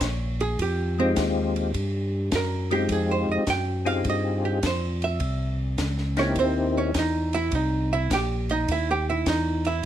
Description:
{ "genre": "soul jazz organ trio", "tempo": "104 BPM", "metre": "4/4", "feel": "swing 68% on 8ths", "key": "unclear", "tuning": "A4 = 440 Hz", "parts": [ { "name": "archtop guitar, miked and amplified", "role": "accompaniment", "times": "0.0-9.8 s", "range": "C4 to G5", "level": "-26 LUFS", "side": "right 4 dB", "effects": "none" }, { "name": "tonewheel organ", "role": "bass", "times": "0.0-9.8 s", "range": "Bb1 to G2", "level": "-27 LUFS", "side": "equal", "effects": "overdrive, slow rotary speaker" }, { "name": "compact cocktail drum kit", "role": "drums", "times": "0.0-9.9 s", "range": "hi-hat, kick drum, ride cymbal, snare drum", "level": "-32 LUFS", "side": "equal", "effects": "none" }, { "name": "percussive tonewheel organ", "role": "melody", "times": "1.0-6.9 s", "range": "Ab3 to Ab4", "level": "-26 LUFS", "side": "left 3 dB", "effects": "slow rotary speaker, chorus vibrato, plate reverb" } ], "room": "light reverb", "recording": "none", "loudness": "-22 LUFS", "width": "side -11 dB against mid", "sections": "0.0-9.9 A section", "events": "hollow-body jazz guitar solo 0.0-9.9", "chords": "0.0 Bbm7; 0.6 Fm9; 5.2 C7#9", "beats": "0.01 | 0.59 1.17 1.75 2.33 | 2.90 3.48 4.06 4.64 | 5.22 5.80 6.38 6.95 | 7.53 8.11 8.69 9.27 | 9.84" }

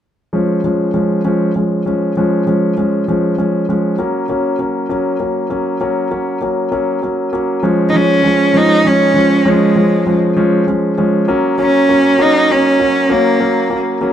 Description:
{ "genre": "pop", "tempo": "66 BPM (dotted quarters)", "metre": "6/8", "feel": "straight", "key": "Db major", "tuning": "A4 = 440 Hz", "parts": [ { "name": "warm concert grand piano", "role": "accompaniment", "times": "0.3-14.1 s", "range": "F3 to Db4", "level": "-14 LUFS", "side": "equal", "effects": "none" }, { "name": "rich cello", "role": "melody", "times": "7.9-13.8 s", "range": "Ab3 to Eb4", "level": "-12 LUFS", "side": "right 2 dB", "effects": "digital delay" } ], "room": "moderate large studio reverb, RT60 0.9 s", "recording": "band playing live in one room", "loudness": "-12 LUFS", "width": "side -10 dB against mid", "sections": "0.3-7.6 A section; 7.6-14.1 B section", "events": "none", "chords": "0.3 Db; 4.0 Gb; 7.6 Db; 11.3 Gb", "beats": "| 0.33 1.25 | 2.16 3.07 | 3.98 4.90 | 5.81 6.72 | 7.64 8.55 | 9.46 10.37 | 11.29 12.20 | 13.11 14.02" }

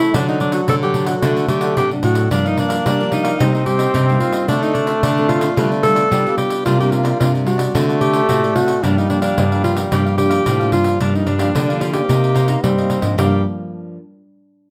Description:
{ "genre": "samba and choro", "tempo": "110 BPM", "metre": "4/4", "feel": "straight", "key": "G minor", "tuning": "A4 = 438 Hz", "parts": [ { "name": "warm alto saxophone", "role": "melody", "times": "0.0-13.4 s", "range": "D4 to A4", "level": "-22 LUFS", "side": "equal", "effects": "none" }, { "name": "bright trombone", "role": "second line", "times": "0.0-13.4 s", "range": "F3 to C4", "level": "-25 LUFS", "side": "equal", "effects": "none" }, { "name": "cavaquinho", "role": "accompaniment", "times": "0.0-13.4 s", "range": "D4 to F#5", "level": "-30 LUFS", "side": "equal", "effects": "none" }, { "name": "nylon-string guitar", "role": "accompaniment", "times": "0.0-14.0 s", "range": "G2 to G4", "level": "-27 LUFS", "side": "equal", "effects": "none" }, { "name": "nylon-string guitar", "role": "bass", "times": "0.1-13.4 s", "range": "G2 to G3", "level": "-22 LUFS", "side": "equal", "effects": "none" }, { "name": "pandeiro", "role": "percussion", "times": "0.1-13.3 s", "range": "none", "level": "-25 LUFS", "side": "equal", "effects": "none" } ], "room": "moderate studio reverb, RT60 0.7 s", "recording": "none", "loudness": "-17 LUFS", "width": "mono", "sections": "0.0-11.0 A section; 11.0-13.2 B section; 13.2-14.7 C section", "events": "none", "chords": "0.1 D; 2.3 Gm7; 3.4 Cm7; 4.5 D7; 5.6 G7/D; 6.7 Csus2; 7.7 D7; 8.8 Gm7; 12.1 Cm7; 13.2 Gm7", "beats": "| 0.14 0.68 1.23 1.77 | 2.31 2.85 3.40 3.94 | 4.49 5.03 5.57 6.12 | 6.66 7.20 7.75 8.29 | 8.83 9.38 9.92 10.46 | 11.01 11.55 12.10 12.64 | 13.18 13.73" }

